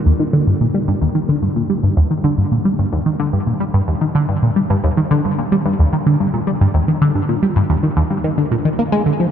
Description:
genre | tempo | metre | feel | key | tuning
ambient | 110 BPM | 4/4 | straight | unclear | A4 = 442 Hz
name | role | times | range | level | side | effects
tight sequenced synth | solo | 0.1-9.3 s | Eb2 to Bb3 | -14 LUFS | equal | chorus, tape echo
room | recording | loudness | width
wet huge ambient reverb, RT60 8.0 s | dark, warm production | -14 LUFS | side -9 dB against mid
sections
0.1-9.3 A section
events
none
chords
none

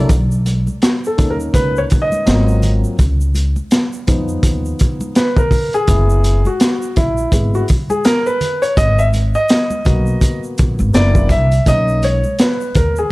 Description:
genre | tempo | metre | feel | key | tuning
hip hop, jazz-hop | 83 BPM | 4/4 | swing 60% on 16ths | B major | A4 = 440 Hz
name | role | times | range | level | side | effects
dark baby grand piano | accompaniment | 0.0-13.1 s | E#3 to E5 | -18 LUFS | left 1 dB | none
upright bass | bass | 0.0-13.0 s | F#1 to E#2 | -16 LUFS | equal | none
crunchy breakbeat drum kit | drums | 0.1-13.0 s | hi-hat, kick drum, snare drum | -15 LUFS | equal | none
tube shaker and congas | percussion | 0.1-13.1 s | none | -29 LUFS | right 1 dB | none
room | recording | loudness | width
small room reverb | dry, gritty hardware recording, cassette tape | -12 LUFS | side -20 dB against mid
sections
0.1-13.1 A section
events
grand piano solo 0.1-13.1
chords
0.1 Bmaj9; 2.3 G#13; 3.0 C#9; 5.9 F#7sus4; 8.8 G#m9; 10.9 F#aug7; 11.7 Bmaj9

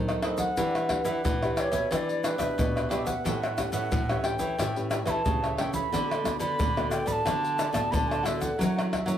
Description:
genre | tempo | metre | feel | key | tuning
samba and choro | 90 BPM | 4/4 | straight | unclear | A4 = 440 Hz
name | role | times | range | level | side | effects
cavaquinho | accompaniment | 0.0-9.2 s | D4 to F#5 | -36 LUFS | right 2 dB | none
nylon-string guitar | accompaniment | 0.0-9.2 s | A2 to C5 | -34 LUFS | left 1 dB | none
nylon-string guitar | bass | 0.0-9.2 s | A2 to F#3 | -32 LUFS | equal | none
egg shaker, pandeiro, tamborim and surdo | percussion | 0.1-9.2 s | none | -30 LUFS | left 1 dB | none
wooden flute | melody | 0.2-9.2 s | B4 to B5 | -31 LUFS | right 1 dB | plate reverb
room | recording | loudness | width
wet studio ambience, RT60 0.5 s | heard from further back in the room | -25 LUFS | side -10 dB against mid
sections
0.0-9.2 A section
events
none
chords
0.0 B7b9; 0.6 Em7; 3.3 A9; 5.9 D6; 8.6 F#7

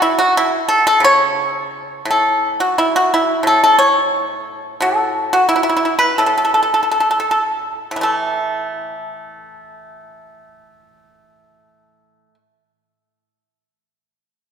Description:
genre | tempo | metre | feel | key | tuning
chinese traditional, Chinese solo plucked strings | 55-92 BPM | 2/4 | rubato | A gong mode | A4 = 436 Hz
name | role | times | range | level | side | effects
pipa | solo | 0.0-12.4 s | A2 to C#5 | -14 LUFS | equal | none
room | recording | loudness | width
wet church reverb, RT60 2.7 s | recorded in a church or concert hall | -13 LUFS | side -7 dB against mid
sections
0.0-8.0 A section; 8.0-12.2 B section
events
slowing down 4.8-8.0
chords
none

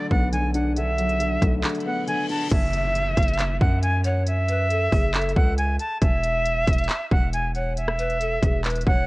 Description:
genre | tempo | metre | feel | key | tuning
hip hop, trap | 137 BPM | 4/4 | half-time | F# minor | A4 = 439 Hz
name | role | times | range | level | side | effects
bright reedy jazz flute | melody | 0.0-9.1 s | E5 to A5 | -26 LUFS | right 1 dB | none
felt-muted upright piano | accompaniment | 0.0-2.5 s | D3 to D4 | -27 LUFS | left 2 dB | none
hard-hitting 808-style bass | bass | 0.1-9.1 s | E1 to F#2 | -25 LUFS | equal | none
trap drum kit | drums | 0.1-9.0 s | crash cymbal, handclaps, hi-hat, kick drum, rim click | -22 LUFS | equal | none
reverse cymbal and downlifter | sound effects | 1.8-6.0 s | none | -37 LUFS | equal | none
breathy large pan pipes | second line | 2.7-9.1 s | G#4 to E5 | -31 LUFS | left 2 dB | none
room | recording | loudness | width
little or no reverb | worn, warbling old tape, cassette tape, warbly pitch drift | -20 LUFS | side -20 dB against mid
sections
0.0-2.5 A section; 2.5-9.1 B section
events
break 1.6-2.5; reverse cymbal 1.8-2.5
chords
0.0 Bm7; 2.5 F#m7; 6.0 N.C.

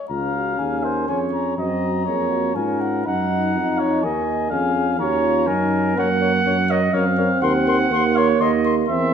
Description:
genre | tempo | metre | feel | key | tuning
classical, brass quintet | 123 BPM | 3/4 | rubato | unclear | A4 = 443 Hz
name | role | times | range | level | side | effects
mellow cornet | melody | 0.0-9.1 s | Db5 to C6 | -26 LUFS | left 8 dB | none
warm trumpet | second line | 0.1-9.1 s | Bb4 to Gb5 | -23 LUFS | right 3 dB | none
mellow French horn | accompaniment | 0.1-9.1 s | Eb4 to Bb4 | -27 LUFS | left 5 dB | none
warm trombone | accompaniment | 0.1-9.1 s | Bb3 to Eb4 | -24 LUFS | right 3 dB | none
warm tuba | bass | 0.1-9.1 s | Db2 to Ab2 | -23 LUFS | right 2 dB | none
room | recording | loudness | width
wet recital hall reverb, RT60 1.5 s | none | -17 LUFS | side -7 dB against mid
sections
0.1-9.1 A section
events
none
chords
0.1 Db; 1.6 Gb; 3.1 Ab5; 6.0 Gb; 7.4 Cm7b5/Eb

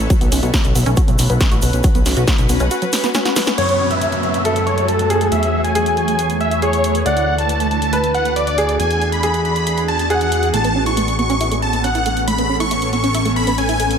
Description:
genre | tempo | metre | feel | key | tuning
uplifting trance | 138 BPM | 4/4 | straight | A major | A4 = 439 Hz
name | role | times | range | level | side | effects
shimmering ambient pad | sustained chords | 0.0-14.0 s | E3 to G#5 | -22 LUFS | equal | chorus, built-in reverb, phaser, sidechain pumping
fat analog bass | bass | 0.0-14.0 s | A1 to F#2 | -21 LUFS | equal | sidechain pumping
tight sequenced synth | arpeggios | 0.1-3.4, 10.5-13.8 s | F#3 to F#4 | -23 LUFS | right 2 dB | chorus, sidechain pumping, ping-pong delay
big-room dance drum kit | drums | 0.1-14.0 s | crash cymbal, hi-hat, snare drum | -24 LUFS | equal | none
electronic kick drum | drums | 0.1-2.4 s | none | -15 LUFS | equal | none
tube shaker | percussion | 0.1-3.6 s | none | -30 LUFS | right 3 dB | none
big supersaw lead | melody | 3.6-14.0 s | A4 to C#6 | -19 LUFS | equal | sidechain pumping, low-pass filter, ping-pong delay
clear concert grand piano | second line | 3.6-10.5 s | G#4 to D5 | -21 LUFS | equal | ping-pong delay
downlifter | sound effects | 3.6-7.1 s | none | -26 LUFS | equal | none
room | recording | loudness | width
light reverb, digital ambience | none | -14 LUFS | side -7 dB against mid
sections
0.0-3.6 A section; 3.6-14.0 B section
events
break 2.7-3.6; drum fill 2.9-3.6; band accent 3.5; filter sweep on supersaw synth 3.6-14.0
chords
0.1 Bsus2; 3.6 F#madd9; 5.3 Aadd9/E; 7.1 D; 8.8 E7; 10.5 Aadd9

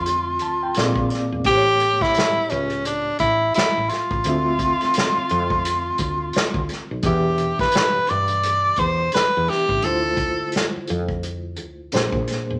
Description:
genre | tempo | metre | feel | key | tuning
R&B, neo-soul | 86 BPM | 4/4 | swing 60% on 16ths | D dorian | A4 = 440 Hz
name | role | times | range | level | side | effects
breathy tenor saxophone | melody | 0.0-10.5 s | C#4 to D5 | -22 LUFS | equal | none
overdriven reed electric piano | accompaniment | 0.0-12.6 s | A2 to A5 | -30 LUFS | equal | fast tremolo
woody fretless electric bass | bass | 0.0-12.6 s | E1 to G2 | -30 LUFS | equal | none
unplugged drum kit | drums | 0.1-12.5 s | hi-hat, kick drum, snare drum | -27 LUFS | equal | none
room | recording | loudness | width
wet large studio reverb, RT60 0.9 s | none | -21 LUFS | mono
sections
0.0-12.6 A section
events
reed electric piano fill 0.1-1.5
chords
0.0 Dm9; 0.8 Bb9; 1.5 A7; 4.2 Dm9; 7.0 Em7; 9.8 Dm9; 11.9 Bb9

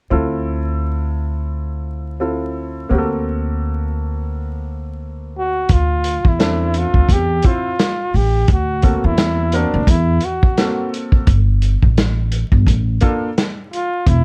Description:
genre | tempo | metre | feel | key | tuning
hip hop, jazz-hop | 86 BPM | 4/4 | swing 58% on 16ths | unclear | A4 = 445 Hz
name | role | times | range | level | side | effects
warm baby grand piano | accompaniment | 0.1-13.3 s | Bb3 to E5 | -26 LUFS | equal | none
upright bass | bass | 0.1-14.2 s | E1 to E2 | -20 LUFS | equal | none
breathy flugelhorn | melody | 5.4-14.2 s | D4 to G4 | -23 LUFS | equal | none
vintage drum kit | drums | 5.7-14.2 s | hi-hat, kick drum, snare drum | -18 LUFS | equal | none
room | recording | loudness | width
little or no reverb | dark, warm production, vinyl crackle | -17 LUFS | mono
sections
0.1-5.7 A section; 5.7-14.2 B section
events
none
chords
0.1 Dm9; 2.9 D7b13; 5.7 Dm9; 8.5 D7b13; 11.3 N.C.

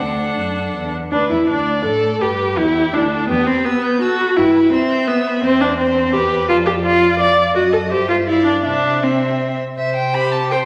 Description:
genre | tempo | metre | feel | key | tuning
quick classical-period movement for string quartet | 166 BPM | 3/4 | rubato | C major from 5.4 s | A4 = 439 Hz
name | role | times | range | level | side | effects
rich violin | melody | 0.0-10.6 s | D4 to G6 | -30 LUFS | equal | none
rich violin | second line | 0.0-10.7 s | G4 to F5 | -26 LUFS | equal | none
rich viola | accompaniment | 0.0-10.7 s | B3 to D5 | -18 LUFS | equal | none
rich cello | bass | 0.0-10.7 s | D2 to C3 | -28 LUFS | equal | none
room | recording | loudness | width
wet recital hall reverb, RT60 1.4 s | vinyl crackle | -17 LUFS | mono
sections
0.0-1.1 A section; 1.1-9.8 B section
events
none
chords
0.0 D; 1.1 Dsus2; 2.2 G; 3.3 Em; 4.4 Em/G; 5.4 C/E; 6.5 Dm/F; 7.6 F#m6; 7.9 C/G; 8.3 G5; 8.7 C; 9.8 C5

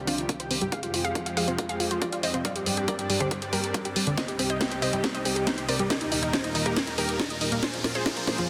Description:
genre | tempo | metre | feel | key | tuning
uplifting trance | 139 BPM | 4/4 | straight | C minor | A4 = 440 Hz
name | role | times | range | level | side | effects
unison pluck | melody | 0.0-8.5 s | D4 to F5 | -33 LUFS | equal | sidechain pumping, delay
lush unison pad | sustained chords | 0.0-8.5 s | C2 to D5 | -36 LUFS | equal | chorus, sidechain pumping
riser | sound effects | 0.5-8.5 s | none | -41 LUFS | equal | none
analog pluck | arpeggios | 0.1-8.4 s | D3 to F5 | -35 LUFS | equal | chorus, cassette tape, sidechain pumping, dub echo
house drum kit | drums | 0.1-8.5 s | hi-hat, snare drum | -31 LUFS | equal | sidechain pumping on hats
electronic kick drum | drums | 0.3-8.1 s | none | -36 LUFS | equal | high-pass filter on kick, high-pass filter on room
room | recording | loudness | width
moderate lush hall reverb, RT60 1.8 s, digital ambience | dense, heavily limited modern master | -27 LUFS | mono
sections
0.0-8.5 A section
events
build-up 0.0-8.5; filter sweep on synth arpeggio sound 0.0-8.5; drum fill 4.2-8.5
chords
0.0 Cm; 0.7 Fmadd9; 2.4 Gsus4; 4.2 Cm; 5.9 Eb; 7.6 Bbadd9

